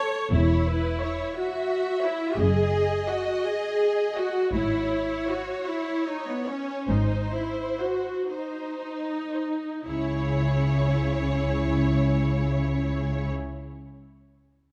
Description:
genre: classical, slow romantic movement for string orchestra.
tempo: 35-59 BPM (dotted quarters).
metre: 12/8.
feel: rubato.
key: C# minor.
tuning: A4 = 440 Hz.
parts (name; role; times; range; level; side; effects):
clear symphonic violin section; melody; 0.0-13.3 s; A4 to D#5; -38 LUFS; equal; none.
rich symphonic violin section; second line; 0.0-13.3 s; G#4 to E5; -36 LUFS; equal; none.
clear symphonic viola section; accompaniment; 0.0-13.3 s; B3 to C#5; -30 LUFS; equal; none.
clear symphonic cello section; bass; 0.3-13.3 s; E2 to C#3; -30 LUFS; equal; none.
rich symphonic double bass section; bass; 0.3-13.3 s; E1 to C#2; -30 LUFS; equal; none.
room: moderate scoring stage reverb, RT60 1.9 s.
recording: dark, warm production.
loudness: -26 LUFS.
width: mono.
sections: 0.0-9.9 A section; 9.9-14.7 B section.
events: slowing down 1.7-9.9.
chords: 0.3 C#m/E; 2.4 D#madd11/F#; 4.5 C#m/G#; 6.9 G#; 9.9 C#m.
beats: | 0.32 1.36 2.38 3.44 | 4.53 5.66 6.88 8.28 | 9.88 11.40 12.98.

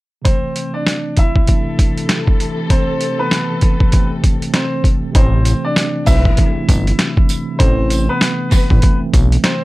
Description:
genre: hip hop, boom-bap hip-hop.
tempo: 98 BPM.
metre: 4/4.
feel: swing 61% on 16ths.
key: A minor.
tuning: A4 = 443 Hz.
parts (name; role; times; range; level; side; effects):
clear upright piano; melody; 0.2-9.6 s; B3 to E5; -22 LUFS; equal; high-pass filter, low-pass filter, slapback echo.
mellow tine electric piano; accompaniment; 0.2-9.6 s; C3 to D4; -22 LUFS; right 1 dB; medium stereo tremolo, cassette tape, high-pass filter, low-pass filter.
boom bap sampler-style drum kit; drums; 0.3-9.6 s; hi-hat, kick drum, snare drum; -14 LUFS; equal; overdrive.
warm studio string section; stabs; 1.5-8.8 s; C3 to B4; -26 LUFS; left 3 dB; high-pass filter, low-pass filter, slapback echo.
fat analog bass; bass; 5.2-9.4 s; G1 to B1; -14 LUFS; equal; none.
tambourine; percussion; 5.5-9.3 s; none; -29 LUFS; right 7 dB; none.
room: little or no reverb.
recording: none.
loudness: -12 LUFS.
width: side -19 dB against mid.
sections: 0.3-5.2 A section; 5.2-9.6 B section.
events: none.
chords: 0.3 Amadd9.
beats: | 0.25 0.86 1.48 2.09 | 2.70 3.31 3.93 4.54 | 5.15 5.76 6.38 6.99 | 7.60 8.21 8.82 9.44.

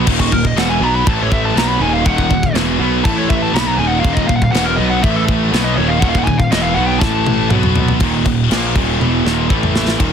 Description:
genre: heavy metal.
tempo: 121 BPM.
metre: 4/4.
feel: straight.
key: unclear.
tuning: A4 = 440 Hz.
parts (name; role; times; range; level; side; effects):
distorted electric guitar; riff; 0.0-10.1 s; Eb2 to Cb4; -20 LUFS; right 11 dB; distortion.
heavy high-gain guitar; riff; 0.0-10.1 s; Eb2 to Cb4; -20 LUFS; left 15 dB; distortion.
tight distorted guitar; riff; 0.0-10.1 s; Eb2 to Cb4; -24 LUFS; equal; distortion.
fuzz picked electric bass; bass; 0.0-10.1 s; Eb1 to Cb2; -20 LUFS; equal; overdrive.
tight metal drum kit; drums; 0.1-10.1 s; china cymbal, crash cymbal, kick drum, ride cymbal, snare drum, toms; -18 LUFS; equal; soft clipping on kick.
nasal lead guitar with a parked wah; melody; 0.2-7.5 s; Gb4 to Cb6; -20 LUFS; equal; overdrive.
room: little or no reverb.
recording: dense, heavily limited modern master.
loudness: -12 LUFS.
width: side -7 dB against mid.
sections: 0.0-8.0 A section; 8.0-10.0 B section.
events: lead electric guitar solo 0.0-8.0; drum fill 7.0-8.0, 9.0-10.0.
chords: 0.1 Ebm; 1.1 A5; 1.6 Ebm; 3.1 A5; 3.5 Ebm; 5.0 A5; 5.5 Ebm; 7.0 A5; 7.5 B5; 8.0 Eb5; 9.5 A5.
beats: | 0.07 0.57 1.07 1.56 | 2.06 2.55 3.05 3.55 | 4.04 4.54 5.04 5.53 | 6.03 6.52 7.02 7.51 | 8.01 8.51 9.00 9.50 | 10.00.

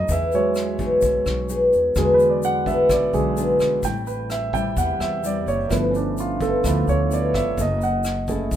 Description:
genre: bossa nova.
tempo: 128 BPM.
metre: 4/4.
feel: straight.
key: unclear.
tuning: A4 = 441 Hz.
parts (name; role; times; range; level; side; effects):
nylon-string guitar; accompaniment; 0.0-8.6 s; G2 to A4; -22 LUFS; left 1 dB; none.
warm grand piano; accompaniment; 0.0-8.6 s; C3 to G5; -23 LUFS; right 3 dB; none.
upright bass; bass; 0.0-8.6 s; F#1 to E2; -26 LUFS; left 1 dB; none.
vintage brush drum kit; drums; 0.1-8.6 s; hi-hat, kick drum, rim click; -31 LUFS; equal; none.
egg shaker; percussion; 0.1-8.6 s; none; -38 LUFS; left 7 dB; none.
room: light reverb.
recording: minimal, uncompressed stereo recording.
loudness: -18 LUFS.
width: side -10 dB against mid.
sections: 0.1-8.6 A section.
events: grand piano solo 0.0-8.6.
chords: 0.1 Emaj7; 2.0 E7; 3.8 Am7; 5.7 G13; 7.6 F#m7.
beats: | 0.09 0.56 1.03 1.50 | 1.96 2.43 2.90 3.37 | 3.83 4.30 4.77 5.24 | 5.71 6.17 6.64 7.11 | 7.58 8.04 8.51.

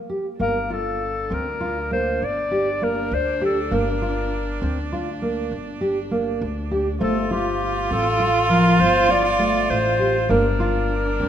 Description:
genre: contemporary instrumental, chamber music in an uneven meter.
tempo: 200 BPM (eighths).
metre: 11/8.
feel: straight.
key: G minor.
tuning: A4 = 440 Hz.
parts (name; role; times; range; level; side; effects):
warm cello; second line; 0.0-11.3 s; D4 to F4; -24 LUFS; right 3 dB; none.
nylon-string guitar; arpeggios; 0.1-11.3 s; F3 to G4; -24 LUFS; right 1 dB; none.
bright clarinet; melody; 0.4-11.3 s; G4 to D5; -24 LUFS; left 3 dB; none.
upright bass; bass; 0.4-11.3 s; G1 to D2; -28 LUFS; equal; none.
celesta; texture; 0.4-7.9 s; C5 to F5; -31 LUFS; left 9 dB; none.
room: moderate concert hall reverb, RT60 2.1 s.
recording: minimal, uncompressed stereo recording.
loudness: -19 LUFS.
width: side -10 dB against mid.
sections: 0.4-11.3 A section.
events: break 0.0-0.4.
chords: 0.4 Gm7; 7.0 Dm/G (rootless); 10.3 Gm7.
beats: 0.09 | 0.40 0.71 1.01 1.31 1.62 1.92 2.22 2.52 2.82 3.12 3.42 | 3.72 4.02 4.32 4.62 4.92 5.22 5.52 5.82 6.11 6.41 6.71 | 7.01 7.31 7.61 7.91 8.20 8.50 8.80 9.10 9.40 9.70 10.00 | 10.30 10.60 10.90 11.20.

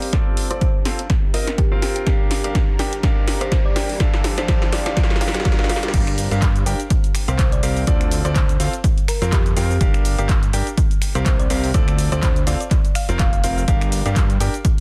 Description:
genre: piano house.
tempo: 124 BPM.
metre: 4/4.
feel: swing 56% on 16ths.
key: G minor.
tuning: A4 = 441 Hz.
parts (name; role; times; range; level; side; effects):
clear concert grand piano; riff; 0.0-14.5 s; C4 to G5; -29 LUFS; equal; sidechain pumping, low-pass filter, digital delay.
punchy analog drum machine; drums; 0.0-14.8 s; crash cymbal, finger snaps, handclaps, hi-hat, shaker, snare drum; -29 LUFS; equal; none.
riser; sound effects; 0.8-5.9 s; none; -36 LUFS; equal; none.
granular cloud pad; texture; 0.0-5.9 s; G4 to Bb5; -36 LUFS; equal; none.
electronic kick drum; drums; 0.1-14.8 s; none; -21 LUFS; equal; none.
thumb-piano-like synth pluck; melody; 0.5-13.6 s; G4 to F5; -32 LUFS; equal; chorus, cassette tape, digital delay.
fat analog bass; bass; 5.9-14.5 s; F1 to G2; -24 LUFS; equal; sidechain pumping.
room: little or no reverb.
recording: dense, heavily limited modern master.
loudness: -19 LUFS.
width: mono.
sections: 0.0-5.9 A section; 5.9-14.8 B section.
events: build-up 0.0-5.9; drum fill 0.0-5.9; filter sweep on grand piano 0.0-5.9; riser 0.8-5.9; drop 5.9-14.8.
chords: 0.1 Dm7; 1.1 Fsus4; 2.1 Gm7; 4.0 Dm7; 5.0 Fsus4; 5.9 Gm7; 6.9 C5; 7.9 Dm7; 8.8 Fsus4; 9.8 Gm7; 10.8 C5; 11.7 Dm7; 12.7 Fsus4; 13.7 Gm7.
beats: | 0.13 0.61 1.10 1.58 | 2.07 2.55 3.03 3.52 | 4.00 4.49 4.97 5.45 | 5.94 6.42 6.91 7.39 | 7.87 8.36 8.84 9.32 | 9.81 10.29 10.78 11.26 | 11.74 12.23 12.71 13.20 | 13.68 14.16 14.65.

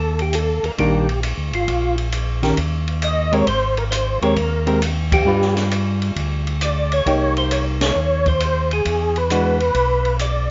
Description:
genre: soul jazz organ trio.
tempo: 134 BPM.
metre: 4/4.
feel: swing 68% on 8ths.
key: Eb major.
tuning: A4 = 440 Hz.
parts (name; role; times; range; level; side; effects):
percussive tonewheel organ; melody; 0.0-10.5 s; F4 to Eb5; -23 LUFS; equal; slow rotary speaker, chorus vibrato.
mellow tonewheel organ; bass; 0.0-10.5 s; Ab1 to G2; -24 LUFS; equal; overdrive, chorus vibrato, slow rotary speaker.
open jazz drum kit; drums; 0.2-10.3 s; hi-hat, kick drum, ride cymbal, snare drum; -28 LUFS; equal; none.
hollow-body jazz guitar; accompaniment; 0.8-9.6 s; Eb3 to B4; -24 LUFS; equal; none.
room: moderate small room reverb, RT60 0.6 s.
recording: nothing above 7.6 kHz.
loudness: -19 LUFS.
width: mono.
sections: 0.0-10.5 A section.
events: band accent 5.0, 7.7.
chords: 0.0 Ebmaj7; 1.7 Bbm; 2.6 Eb; 3.5 Abmaj9; 5.3 G7; 7.1 Cm7; 8.9 E9.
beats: 0.33 0.78 1.23 | 1.68 2.13 2.58 3.02 | 3.47 3.92 4.37 4.82 | 5.27 5.71 6.16 6.61 | 7.06 7.51 7.96 8.41 | 8.86 9.30 9.75 10.20.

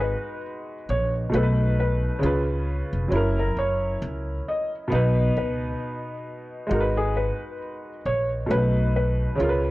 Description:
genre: lo-fi hip hop.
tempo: 67 BPM.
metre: 4/4.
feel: swing 56% on 16ths.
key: unclear.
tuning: A4 = 439 Hz.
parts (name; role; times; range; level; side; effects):
felt-muted upright piano; melody; 0.0-9.4 s; G#4 to D#5; -28 LUFS; left 1 dB; low-pass filter, plate reverb.
warm upright piano; accompaniment; 0.0-9.7 s; B2 to B4; -26 LUFS; equal; cassette tape, low-pass filter, plate reverb.
upright bass; bass; 0.0-9.7 s; E#1 to C#2; -24 LUFS; equal; none.
room: moderate studio reverb, RT60 0.5 s.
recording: worn, warbling old tape, cassette tape, warbly pitch drift.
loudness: -22 LUFS.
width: side -18 dB against mid.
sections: 0.0-9.7 A section.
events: none.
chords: 0.0 G#m7; 1.3 B7; 2.2 C#7; 3.1 F#7; 4.9 B; 6.7 G#m7; 8.5 B7.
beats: 0.43 1.33 2.22 | 3.12 4.01 4.91 5.81 | 6.70 7.60 8.49 9.39.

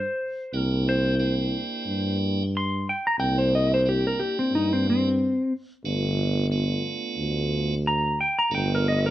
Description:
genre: straight-eighth soul blues.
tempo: 90 BPM.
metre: 4/4.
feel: swing 56% on 16ths.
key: C mixolydian.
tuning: A4 = 439 Hz.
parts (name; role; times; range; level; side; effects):
clean lap steel guitar; melody; 0.0-9.1 s; C4 to C6; -24 LUFS; left 1 dB; none.
mellow tuba; bass; 0.0-9.1 s; G1 to G2; -25 LUFS; equal; none.
tonewheel organ; accompaniment; 0.5-9.1 s; A3 to G4; -30 LUFS; right 4 dB; overdrive, stopped rotary speaker.
room: light reverb.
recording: band playing live in one room.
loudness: -22 LUFS.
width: side -14 dB against mid.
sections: 0.0-9.1 A section.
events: electric slide guitar solo 0.0-9.1.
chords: 0.0 C9; 5.9 G9.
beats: | 0.54 1.20 1.87 2.53 | 3.19 3.86 4.52 5.19 | 5.85 6.52 7.18 7.85 | 8.51.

